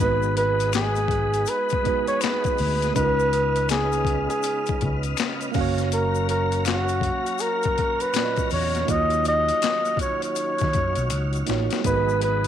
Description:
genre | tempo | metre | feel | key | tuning
R&B, neo-soul | 81 BPM | 4/4 | swing 62% on 16ths | G# dorian | A4 = 440 Hz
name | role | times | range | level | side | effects
breathy flugelhorn | melody | 0.0-12.5 s | F#4 to D#5 | -23 LUFS | equal | slapback echo
tine electric piano | accompaniment | 0.0-12.5 s | A#2 to E#5 | -29 LUFS | right 13 dB | none
tonewheel organ | sustained chords | 0.0-12.5 s | C#3 to A#5 | -32 LUFS | left 1 dB | chorus vibrato, slow rotary speaker
fretless electric bass | bass | 0.0-12.5 s | F#1 to D#3 | -26 LUFS | equal | wide subtle chorus
tube shaker and finger snaps | percussion | 0.2-12.5 s | none | -37 LUFS | left 15 dB | none
boom bap sampler-style drum kit | drums | 0.4-12.5 s | handclaps, hi-hat, kick drum, snare drum | -28 LUFS | left 5 dB | overdrive
room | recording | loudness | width
light reverb, digital ambience | 1960s-style stereo with parts hard left and right | -20 LUFS | side -10 dB against mid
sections
0.0-12.5 A section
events
drum fill 11.1-11.8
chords
0.0 G#m7; 3.0 C#9; 5.5 F#maj7; 8.9 D#m9; 11.8 G#m7

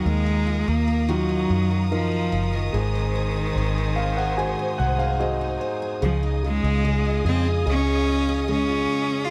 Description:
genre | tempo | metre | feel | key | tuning
pop ballad | 73 BPM | 4/4 | straight | Db major | A4 = 441 Hz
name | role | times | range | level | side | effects
rich cello | melody | 0.0-9.3 s | Eb3 to F4 | -27 LUFS | equal | none
warm concert grand piano | accompaniment | 0.0-9.3 s | Db3 to Ab5 | -30 LUFS | equal | none
warm studio string section | sustained chords | 0.0-9.3 s | Bb4 to Eb6 | -36 LUFS | equal | none
picked steel-string acoustic guitar | arpeggios | 0.0-9.3 s | Ab2 to Bb4 | -35 LUFS | equal | none
vintage muted fingered electric bass | bass | 0.0-8.9 s | Gb1 to Gb2 | -26 LUFS | equal | none
room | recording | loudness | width
studio reverb | none | -23 LUFS | mono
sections
0.0-6.0 A section; 6.0-9.3 B section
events
grand piano fill 3.6-6.0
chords
0.0 Ebmadd9; 2.7 Ab7; 6.0 Dbadd9

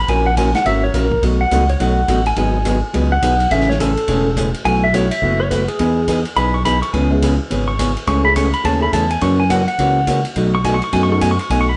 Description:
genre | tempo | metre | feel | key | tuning
country, western swing | 210 BPM | 4/4 | swing 61% on 8ths | unclear | A4 = 441 Hz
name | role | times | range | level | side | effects
pedal steel guitar | second line | 0.0-11.8 s | G#4 to C#6 | -21 LUFS | equal | none
smooth synth bass | bass | 0.0-11.8 s | E1 to F#2 | -21 LUFS | equal | none
vintage hollow-body jazz guitar | accompaniment | 0.1-11.7 s | B2 to A#4 | -22 LUFS | equal | none
vintage drum kit | drums | 0.1-11.6 s | hi-hat, kick drum, ride cymbal, snare drum | -29 LUFS | equal | none
dark upright piano | accompaniment | 7.1-8.9, 11.1-11.2 s | G#3 to A4 | -25 LUFS | equal | none
room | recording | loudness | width
moderate studio reverb, RT60 0.8 s | band playing live in one room, nothing above 10.4 kHz | -16 LUFS | mono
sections
0.0-11.8 A section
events
pedal steel guitar solo 0.0-11.8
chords
0.1 F#7/A#; 1.2 B7; 2.4 G#m7; 3.5 Amaj7; 4.7 B7sus4; 5.8 Emaj7; 6.9 C#m7; 8.1 Amaj7/C#; 9.2 F#7; 10.4 B7

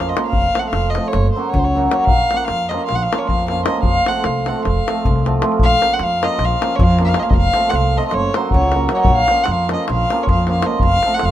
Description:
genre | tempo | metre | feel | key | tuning
balkan folk, Balkan wedding band | 309 BPM (eighths) | 9/8 | straight | unclear | A4 = 440 Hz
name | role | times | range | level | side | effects
dark violin | melody | 0.0-11.3 s | C5 to Gb5 | -19 LUFS | left 1 dB | none
cimbalom | accompaniment | 0.0-11.3 s | F3 to Gb4 | -20 LUFS | right 2 dB | none
upright bass | bass | 0.0-11.3 s | F1 to F2 | -19 LUFS | equal | none
davul | percussion | 0.0-11.3 s | none | -20 LUFS | left 1 dB | none
room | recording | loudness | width
little or no reverb | minimal, uncompressed stereo recording | -14 LUFS | side -12 dB against mid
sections
0.0-5.6 A section; 5.6-11.3 A section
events
none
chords
0.3 F; 1.1 Gb; 2.1 Bbm; 3.8 F; 5.6 Bbm; 7.3 F; 8.1 Gb; 9.1 Bbm

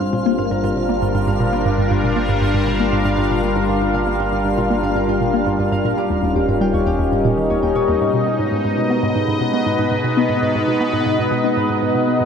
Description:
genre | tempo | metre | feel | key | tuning
ambient, sequencer-driven space music | 118 BPM | 4/4 | straight | G phrygian | A4 = 443 Hz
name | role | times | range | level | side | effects
sweeping resonant pad | sustained chords | 0.0-12.3 s | Cb3 to F5 | -18 LUFS | left 1 dB | chorus
Celtic harp | arpeggios | 0.0-9.7 s | F4 to C6 | -26 LUFS | moving between left 5 dB and right 2 dB | auto-pan, ping-pong delay
hollow square pluck | riff | 0.0-12.3 s | Eb2 to Cb4 | -21 LUFS | equal | chorus, phaser, ping-pong delay
warm sub bass | bass | 0.0-8.0 s | Eb1 to G1 | -28 LUFS | equal | none
twinkling granular texture | texture | 0.0-8.0 s | F5 | -32 LUFS | right 4 dB | built-in reverb
room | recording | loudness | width
wet huge ambient reverb, RT60 7.7 s | dark, warm production | -16 LUFS | side -7 dB against mid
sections
0.0-8.0 A section; 8.0-12.3 B section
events
none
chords
0.0 Gm7; 6.0 Eb7; 8.0 Abm

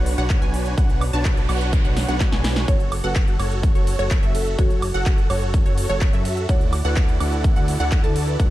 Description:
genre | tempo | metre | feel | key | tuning
EDM, festival progressive house | 126 BPM | 4/4 | straight | F# minor | A4 = 440 Hz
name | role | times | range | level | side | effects
wide unison pluck | arpeggios | 0.0-8.5 s | C#5 to A5 | -31 LUFS | right 1 dB | sidechain pumping, dub echo
supersaw chords | riff | 0.0-8.5 s | D4 to A5 | -28 LUFS | right 2 dB | sidechain pumping, dub echo
fat analog bass | bass | 0.0-8.5 s | F#1 to F#2 | -23 LUFS | equal | sidechain pumping
big-room dance drum kit | drums | 0.1-8.5 s | handclaps, hi-hat, ride cymbal, snare drum, woodblock | -30 LUFS | right 1 dB | none
electronic kick drum | drums | 0.3-8.5 s | none | -18 LUFS | equal | none
noise sweep | sound effects | 1.3-2.7 s | none | -35 LUFS | right 2 dB | none
marimba with medium mallets | melody | 2.7-8.4 s | F#4 to C#5 | -31 LUFS | equal | dub echo
room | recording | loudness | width
little or no reverb | dark, warm production | -17 LUFS | side -15 dB against mid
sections
0.0-8.5 A section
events
noise sweep 1.3-2.7; drum fill 2.0-2.7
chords
0.0 Bmadd9; 2.7 F#m; 6.5 Dadd9

